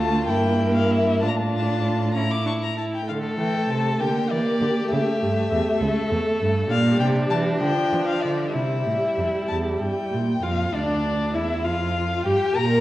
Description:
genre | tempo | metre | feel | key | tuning
quick classical-period movement for string quartet | 66 BPM (dotted quarters) | 6/8 | rubato | unclear | A4 = 441 Hz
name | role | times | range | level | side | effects
dark violin | melody | 0.0-12.8 s | D5 to D6 | -28 LUFS | left 4 dB | none
dark violin | second line | 0.0-12.8 s | D4 to Bb4 | -27 LUFS | left 1 dB | none
dark viola | accompaniment | 0.0-12.8 s | F3 to Bb4 | -26 LUFS | right 1 dB | none
warm cello | bass | 0.0-12.8 s | C#2 to E3 | -25 LUFS | right 2 dB | none
room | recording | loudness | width
wet recital hall reverb, RT60 1.4 s | worn, warbling old tape, cassette tape, warbly pitch drift | -20 LUFS | side -15 dB against mid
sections
0.0-10.4 A section; 10.4-12.8 B section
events
none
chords
0.3 Edim/G; 1.2 Dm/A; 2.1 A5; 3.1 D5; 4.0 Em7b5/D (rootless); 4.9 A7(no3); 6.7 Gm7/Bb; 8.5 C; 10.4 Dmadd9; 12.3 Gm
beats
0.29 | 1.23 2.15 | 3.08 4.00 | 4.91 5.81 | 6.70 7.61 | 8.54 9.49 | 10.43 11.35 | 12.26

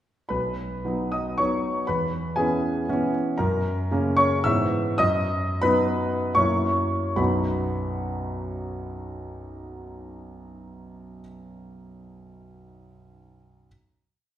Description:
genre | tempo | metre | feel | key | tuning
classical, romantic triple-time dance for piano with dotted rhythms | 68-127 BPM | 3/4 | rubato | B major | A4 = 441 Hz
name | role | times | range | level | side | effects
warm concert grand piano | solo | 0.3-13.7 s | B1 to E6 | -23 LUFS | equal | none
room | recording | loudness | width
wet recital hall reverb, RT60 1.7 s | heard from further back in the room | -22 LUFS | side -11 dB against mid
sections
0.3-7.2 A section; 7.2-11.6 final chord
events
slowing down 2.6-7.2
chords
0.3 B; 1.9 E6; 3.4 F#; 4.5 E/G#; 5.0 B/F#; 6.4 F#7; 7.2 B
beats
| 0.30 0.85 1.39 | 1.88 2.38 2.88 | 3.39 3.91 4.45 | 5.00 5.63 6.37 | 7.18 7.93 8.67 | 9.37 10.10 10.85

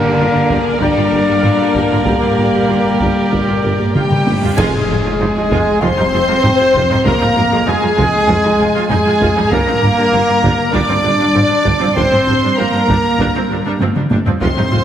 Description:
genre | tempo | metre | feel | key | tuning
cinematic, epic orchestral film score | 98 BPM | 4/4 | straight | unclear | A4 = 444 Hz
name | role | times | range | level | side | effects
rich symphonic violin section | melody | 0.0-14.8 s | D5 to D6 | -22 LUFS | left 1 dB | none
warm symphonic violin section | second line | 0.0-14.8 s | F4 to D5 | -23 LUFS | left 2 dB | none
clear symphonic viola section | accompaniment | 0.0-14.8 s | F3 to Bb4 | -23 LUFS | right 1 dB | none
dark French horn section | sustained chords | 0.0-14.8 s | G3 to D4 | -19 LUFS | left 4 dB | none
warm trombone section | sustained chords | 0.0-14.8 s | D3 to D4 | -20 LUFS | right 2 dB | none
mellow trumpet section | stabs | 0.0-14.8 s | G4 to D5 | -20 LUFS | right 1 dB | none
dark symphonic double bass section | bass | 0.0-14.8 s | F1 to G1 | -23 LUFS | right 2 dB | none
warm studio cello section | bass | 0.0-14.8 s | F2 to G3 | -22 LUFS | right 2 dB | none
dark tuba | bass | 0.2-14.8 s | F1 to G1 | -24 LUFS | right 2 dB | none
taiko ensemble | drums | 0.5-14.8 s | none | -20 LUFS | equal | none
cymbal swell, clash cymbals and concert bass drum | percussion | 2.0-5.8 s | none | -28 LUFS | equal | none
reverse cymbal and impact | sound effects | 4.0-7.1 s | none | -34 LUFS | left 1 dB | none
timpani | percussion | 4.6-5.5, 14.4-14.8 s | F2 | -25 LUFS | equal | none
room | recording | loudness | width
wet concert hall reverb, RT60 1.8 s | heavily compressed radio sound, multiband compression | -11 LUFS | side -10 dB against mid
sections
0.0-4.6 A section; 4.6-14.8 B section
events
drum fill 4.0-4.6, 13.8-14.4; reverse cymbal 4.0-4.6; band accent 4.6-5.2; impact 4.6-7.1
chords
0.0 Gm; 4.6 Fm; 9.5 Gm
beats
0.19 0.81 1.43 | 2.06 2.69 3.32 3.95 | 4.58 5.20 5.82 6.44 | 7.05 7.67 8.28 8.90 | 9.51 10.12 10.73 11.35 | 11.96 12.57 13.19 13.80 | 14.41

